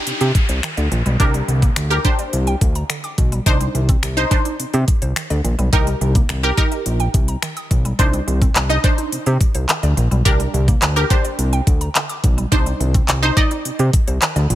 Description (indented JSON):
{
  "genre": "dance-pop",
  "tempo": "106 BPM",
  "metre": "4/4",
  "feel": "straight",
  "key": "C minor",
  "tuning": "A4 = 442 Hz",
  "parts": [
    { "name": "wide unison pluck", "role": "accompaniment", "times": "0.0-13.9 s", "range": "D4 to Eb5", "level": "-21 LUFS", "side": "right 1 dB", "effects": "phaser, sidechain pumping" },
    { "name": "mallet-like synth pluck", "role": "arpeggios", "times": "0.0-14.6 s", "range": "D3 to Eb6", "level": "-28 LUFS", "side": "right 3 dB", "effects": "chorus, sidechain pumping, ping-pong delay" },
    { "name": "downlifter", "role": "sound effects", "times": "0.0-3.5 s", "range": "none", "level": "-28 LUFS", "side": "equal", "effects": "none" },
    { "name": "fat analog bass", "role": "bass", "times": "0.1-14.6 s", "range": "Bb1 to C3", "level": "-18 LUFS", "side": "equal", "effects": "sidechain pumping" },
    { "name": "pop drum kit", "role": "drums", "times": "0.1-14.6 s", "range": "finger snaps, handclaps, hi-hat, kick drum", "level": "-17 LUFS", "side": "equal", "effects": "none" }
  ],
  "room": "digital ambience",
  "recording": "none",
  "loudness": "-15 LUFS",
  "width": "side -13 dB against mid",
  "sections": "0.0-14.6 A section",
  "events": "none",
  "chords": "0.0 Cmadd9; 1.2 Gm/C; 3.5 Cmadd9; 5.7 Eb/C; 8.0 Cmadd9; 10.3 Gm/C; 12.5 Cmadd9"
}